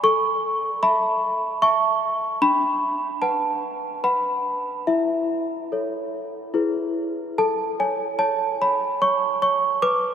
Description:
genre	classical, lullaby for celesta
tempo	74 BPM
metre	3/4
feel	rubato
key	A major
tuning	A4 = 441 Hz
part	small celesta	solo	0.0-10.1 s	D4 to D6	-20 LUFS	equal	none
room	wet cathedral reverb, RT60 5.4 s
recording	in a vast, echoing space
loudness	-20 LUFS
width	side -8 dB against mid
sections	0.0-7.4 A section; 7.4-10.1 B section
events	none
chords	0.0 A; 2.4 Bm/D; 4.9 A/E; 6.5 E; 7.4 A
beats	| 0.03 0.83 1.62 | 2.42 3.22 4.04 | 4.88 5.72 6.55 | 7.38 8.20 9.01 | 9.81

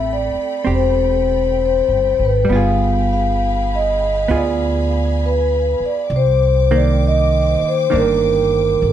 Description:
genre	jazz ballad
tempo	66 BPM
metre	4/4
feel	swing 66% on 8ths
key	unclear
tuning	A4 = 439 Hz
part	vibraphone with medium mallets	melody	0.0-8.9 s	A4 to F5	-17 LUFS	left 1 dB	none
part	hollow-body jazz guitar	accompaniment	0.0-8.9 s	Eb3 to Ab4	-22 LUFS	right 4 dB	none
part	warm symphonic string section	sustained chords	0.0-8.9 s	Ab4 to D6	-29 LUFS	left 3 dB	none
part	upright bass	bass	0.0-8.9 s	E1 to D2	-19 LUFS	equal	none
room	little or no reverb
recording	dark, warm production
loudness	-14 LUFS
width	side -10 dB against mid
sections	0.0-8.9 A section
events	none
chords	0.0 Am9; 2.5 G7b9; 6.1 Cm9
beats	0.64 1.56 | 2.47 3.37 4.28 5.19 | 6.09 7.00 7.91 8.81

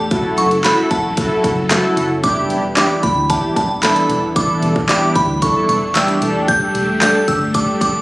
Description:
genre	dance-pop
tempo	113 BPM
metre	4/4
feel	straight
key	E minor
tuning	A4 = 439 Hz
part	glassy synth bell	melody	0.0-8.0 s	A5 to G6	-18 LUFS	right 1 dB	chorus, tape echo
part	string machine, violas	sustained chords	0.0-8.0 s	E3 to A4	-22 LUFS	equal	phaser, ensemble chorus, sidechain pumping
part	organ-like FM bass	bass	0.0-8.0 s	E1 to D2	-26 LUFS	equal	sidechain pumping
part	mellow synth brass	accompaniment	0.1-7.9 s	D4 to A4	-18 LUFS	equal	chorus, sidechain pumping
part	pop drum kit	drums	0.1-7.9 s	handclaps, hi-hat, kick drum, snare drum	-19 LUFS	equal	none
room	light reverb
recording	recorded on a phone in the room, studio reverb, compression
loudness	-13 LUFS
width	side -20 dB against mid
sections	0.0-8.0 A section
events	none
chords	0.1 F#m7; 2.2 Em7; 6.2 A7sus4/E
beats	| 0.11 0.64 1.17 1.71 | 2.24 2.77 3.30 3.83 | 4.36 4.89 5.42 5.95 | 6.48 7.01 7.55

